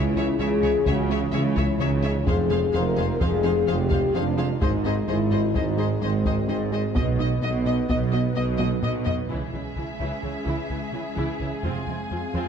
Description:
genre	cinematic, hybrid orchestral and electronic film score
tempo	128 BPM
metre	5/4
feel	straight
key	unclear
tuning	A4 = 442 Hz
part	airy breathy pad	sustained chords	0.0-12.5 s	E3 to F5	-33 LUFS	equal	chorus
part	mellow French horn section	sustained chords	0.0-8.8 s	B3 to A#4	-27 LUFS	left 6 dB	none
part	soft round pluck	arpeggios	0.0-12.5 s	C#3 to F#4	-37 LUFS	right 4 dB	none
part	plucky analog bass	riff	0.0-12.5 s	C#2 to B3	-31 LUFS	left 3 dB	none
part	rich symphonic cello section	bass	0.0-12.4 s	F2 to C#3	-30 LUFS	right 3 dB	none
part	rich symphonic double bass section	bass	0.0-11.9 s	F1 to C#2	-29 LUFS	right 5 dB	none
part	warm tuba	bass	0.0-9.2 s	F1 to C#2	-29 LUFS	right 5 dB	none
part	warm symphonic violin section	melody	0.2-9.1 s	D#5 to F5	-35 LUFS	left 6 dB	none
part	warm symphonic violin section	second line	0.2-12.5 s	G#4 to Ab5	-35 LUFS	left 3 dB	none
part	rich symphonic viola section	accompaniment	0.2-12.5 s	E3 to D#5	-35 LUFS	equal	none
part	solo taiko drums	drums	0.9-10.2 s	none	-29 LUFS	equal	none
room	moderate scoring stage reverb, RT60 1.7 s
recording	dark, warm production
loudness	-21 LUFS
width	side -7 dB against mid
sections	0.0-9.3 A section; 9.3-12.5 B section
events	drum fill 8.6-9.3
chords	0.0 C#m; 2.3 Fm; 4.6 G#; 7.0 B; 9.3 C#m; 11.6 Fm

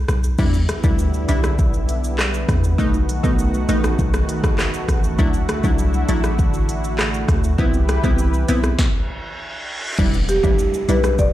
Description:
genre	dancehall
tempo	100 BPM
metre	4/4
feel	straight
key	E minor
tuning	A4 = 439 Hz
part	warm 808-style bass	bass	0.0-11.3 s	E1 to E2	-20 LUFS	equal	none
part	afro-pop drum kit	drums	0.1-11.3 s	crash cymbal, handclaps, hi-hat, kick drum, rim click, shaker, snare drum	-20 LUFS	equal	none
part	wavetable chord stab	accompaniment	0.4-11.2 s	F#3 to E4	-23 LUFS	left 1 dB	none
part	lush unison pad	sustained chords	0.4-8.8 s	D3 to B4	-26 LUFS	right 1 dB	chorus, sidechain pumping
part	reverse cymbal and downlifter	sound effects	9.0-11.3 s	none	-29 LUFS	equal	none
part	marimba with medium mallets	melody	10.3-11.3 s	G4 to D5	-19 LUFS	right 1 dB	none
room	little or no reverb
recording	played on a big sound system in a bare room, large studio reverb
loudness	-16 LUFS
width	side -14 dB against mid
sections	0.4-10.0 A section; 10.0-11.3 B section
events	break 0.0-0.4; stop 8.8-10.0; reverse cymbal 9.0-10.0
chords	0.4 Em7; 2.8 B7; 5.2 Dadd9; 7.6 Cmaj7; 10.0 Em7

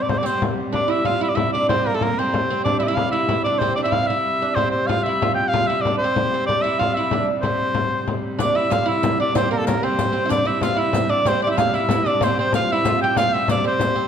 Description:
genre	medieval dance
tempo	125 BPM (dotted quarters)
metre	6/8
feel	straight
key	C mixolydian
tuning	A4 = 439 Hz
part	clear shawm	melody	0.0-14.1 s	A4 to G5	-21 LUFS	equal	slapback echo
part	warm hurdy-gurdy	drone	0.0-14.1 s	C3 to G3	-27 LUFS	equal	none
part	frame drum	percussion	0.1-13.9 s	none	-24 LUFS	left 3 dB	none
part	oud	second line	0.2-14.1 s	A3 to G4	-24 LUFS	right 5 dB	none
part	riq	percussion	0.3-0.4, 8.4-14.0 s	none	-30 LUFS	left 4 dB	none
room	wet recital hall reverb, RT60 1.6 s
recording	dark, warm production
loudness	-18 LUFS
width	side -8 dB against mid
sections	0.7-8.4 A section; 8.4-14.1 A section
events	none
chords	none

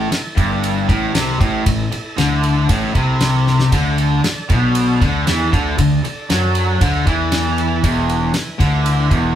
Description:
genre	classic rock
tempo	117 BPM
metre	4/4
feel	straight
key	unclear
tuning	A4 = 436 Hz
part	overdriven tonewheel organ	sustained chords	0.0-9.4 s	D4 to A5	-31 LUFS	right 1 dB	slow rotary speaker
part	crunchy overdriven guitar	riff	0.0-9.4 s	E2 to F#3	-19 LUFS	left 4 dB	none
part	distorted electric guitar	riff	0.0-9.4 s	E2 to F#3	-21 LUFS	right 4 dB	distortion
part	fuzz fingered electric bass	bass	0.0-9.3 s	E1 to F#2	-21 LUFS	equal	overdrive
part	damped 70s drum kit	drums	0.1-9.2 s	kick drum, ride cymbal, snare drum	-20 LUFS	equal	none
room	wet studio reverb, RT60 0.6 s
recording	band playing live in one room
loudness	-14 LUFS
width	side -10 dB against mid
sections	0.0-9.4 A section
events	drum fill 3.5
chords	0.0 A5; 3.7 D5; 7.8 E

